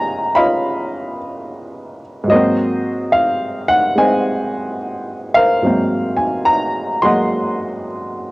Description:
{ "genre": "solo jazz", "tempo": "72 BPM", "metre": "4/4", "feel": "swing 67% on 8ths, rubato", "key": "Ab mixolydian", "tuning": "A4 = 437 Hz", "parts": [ { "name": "warm upright piano", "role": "solo", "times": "0.0-8.3 s", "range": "Ab2 to C6", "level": "-15 LUFS", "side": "equal", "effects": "none" } ], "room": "light reverb", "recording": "home recording on cassette", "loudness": "-14 LUFS", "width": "side -21 dB against mid", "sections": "0.0-8.3 A section", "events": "none", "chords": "0.0 Db9; 2.3 Ab9", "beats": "0.64 1.48 | 2.31 3.14 3.97 4.80 | 5.64 6.48 7.33 8.20" }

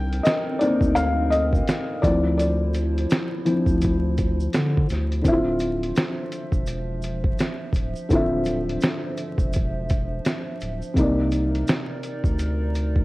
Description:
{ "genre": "lo-fi hip hop", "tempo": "84 BPM", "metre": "4/4", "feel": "swing 62% on 16ths", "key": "D minor", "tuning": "A4 = 440 Hz", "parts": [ { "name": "felt-muted upright piano", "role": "accompaniment", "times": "0.0-13.0 s", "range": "C3 to G5", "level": "-24 LUFS", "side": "left 1 dB", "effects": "low-pass filter" }, { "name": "warbly tape-like pad", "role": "sustained chords", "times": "0.0-13.0 s", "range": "F3 to E5", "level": "-32 LUFS", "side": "right 1 dB", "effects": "chorus, built-in reverb, low-pass filter" }, { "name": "saturated sub bass", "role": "bass", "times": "0.0-13.0 s", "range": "D1 to D3", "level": "-25 LUFS", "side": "equal", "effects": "tube saturation" }, { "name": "dusty soul sampler-style drum kit", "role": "drums", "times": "0.1-13.0 s", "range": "hi-hat, kick drum, snare drum", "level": "-24 LUFS", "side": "equal", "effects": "none" }, { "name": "tube shaker", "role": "percussion", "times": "0.2-13.0 s", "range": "none", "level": "-49 LUFS", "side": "right 4 dB", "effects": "none" } ], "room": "light reverb", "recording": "worn, warbling old tape, cassette tape, vinyl crackle, warbly pitch drift", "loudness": "-20 LUFS", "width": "side -19 dB against mid", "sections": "0.0-5.2 A section; 5.2-13.0 B section", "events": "felt piano solo 0.0-5.2", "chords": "0.0 Cm9; 2.0 Dm9; 11.0 Cm9", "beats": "0.25 0.96 1.68 | 2.39 3.10 3.82 4.53 | 5.25 5.96 6.68 7.39 | 8.10 8.82 9.53 10.25 | 10.96 11.68 12.39" }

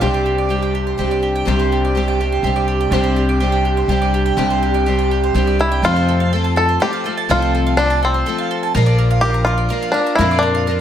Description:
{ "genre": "indie folk with a building arrangement", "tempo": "124 BPM", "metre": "3/4", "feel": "straight", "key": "F major", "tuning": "A4 = 440 Hz", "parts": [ { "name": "clear upright piano", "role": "accompaniment", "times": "0.0-5.9 s", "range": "C2 to D5", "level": "-27 LUFS", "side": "right 1 dB", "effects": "none" }, { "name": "picked twelve-string acoustic guitar", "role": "accompaniment", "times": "0.0-10.8 s", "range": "F2 to G4", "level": "-21 LUFS", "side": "left 7 dB", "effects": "none" }, { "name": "mandolin", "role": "arpeggios", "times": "0.0-10.8 s", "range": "G4 to Bb5", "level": "-20 LUFS", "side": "right 7 dB", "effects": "slapback echo" }, { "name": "upright bass", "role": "bass", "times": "0.0-10.8 s", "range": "Bb1 to F2", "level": "-18 LUFS", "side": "equal", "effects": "none" }, { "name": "bluegrass banjo", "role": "melody", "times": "5.6-10.8 s", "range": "C4 to A4", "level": "-18 LUFS", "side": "left 1 dB", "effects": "slapback echo" } ], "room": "light reverb, small room ambience", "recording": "none", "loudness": "-14 LUFS", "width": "side -10 dB against mid", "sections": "0.0-5.8 A section; 5.8-10.8 B section", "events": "build-up 0.0-5.8", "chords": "0.0 Csus2; 5.8 F; 8.7 Bb", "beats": "| 0.03 0.51 0.99 | 1.48 1.97 2.45 | 2.93 3.42 3.90 | 4.39 4.87 5.35 | 5.84 6.32 6.80 | 7.29 7.77 8.26 | 8.74 9.22 9.71 | 10.19 10.67" }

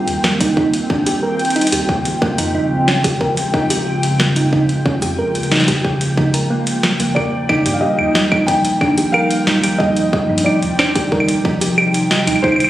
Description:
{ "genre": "IDM", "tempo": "91 BPM", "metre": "4/4", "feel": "straight", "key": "Eb major", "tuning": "A4 = 440 Hz", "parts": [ { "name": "glassy FM pad", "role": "sustained chords", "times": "0.0-12.7 s", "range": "C3 to F4", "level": "-19 LUFS", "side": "equal", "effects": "ensemble chorus, built-in reverb" }, { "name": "bubbling stepped-filter texture", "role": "texture", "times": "0.0-12.7 s", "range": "G5", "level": "-25 LUFS", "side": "left 2 dB", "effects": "chorus, built-in reverb, sidechain pumping" }, { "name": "warm sub bass", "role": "bass", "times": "0.1-12.5 s", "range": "Ab1 to G2", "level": "-25 LUFS", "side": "equal", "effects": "tube saturation" }, { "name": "booming analog drum machine", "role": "drums", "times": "0.1-12.7 s", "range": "claves, hi-hat, snare drum", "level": "-18 LUFS", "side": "equal", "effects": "small room ambience, dub echo" }, { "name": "thumb-piano-like synth pluck", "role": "arpeggios", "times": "0.2-12.5 s", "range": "Bb3 to Eb5", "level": "-20 LUFS", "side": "right 2 dB", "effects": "chorus, dub echo" }, { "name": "electronic kick drum", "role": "drums", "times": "0.4-12.6 s", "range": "none", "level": "-20 LUFS", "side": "equal", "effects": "overdrive, small room ambience" }, { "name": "felt-muted upright piano", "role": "melody", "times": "7.1-12.7 s", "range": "C5 to G5", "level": "-21 LUFS", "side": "equal", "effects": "tape echo" } ], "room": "moderate echo chamber reverb, RT60 2.2 s", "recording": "recorded on a phone in the room, studio reverb", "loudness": "-13 LUFS", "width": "side -14 dB against mid", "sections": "0.0-12.7 A section", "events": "none", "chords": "0.0 Ebadd9; 1.9 Dbmaj7; 7.2 Ebmaj9", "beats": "0.57 1.23 | 1.89 2.55 3.21 3.87 | 4.53 5.18 5.84 6.50 | 7.16 7.82 8.48 9.14 | 9.80 10.46 11.12 11.78 | 12.44" }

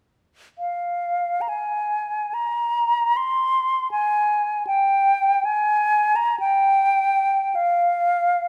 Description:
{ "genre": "classical, free, expressive piece for unaccompanied flute", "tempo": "42-81 BPM", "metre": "4/4", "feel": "rubato", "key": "F minor", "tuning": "A4 = 441 Hz", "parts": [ { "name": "concert flute", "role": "solo", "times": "0.6-8.5 s", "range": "F5 to C6", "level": "-21 LUFS", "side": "equal", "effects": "none" } ], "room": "moderate scoring stage reverb, RT60 1.6 s", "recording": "none", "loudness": "-21 LUFS", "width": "mono", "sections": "0.6-7.6 A section", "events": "none", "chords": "none", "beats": "| 0.58 1.46 2.33 3.16 | 3.91 4.65 5.45 6.39 | 7.55 8.42" }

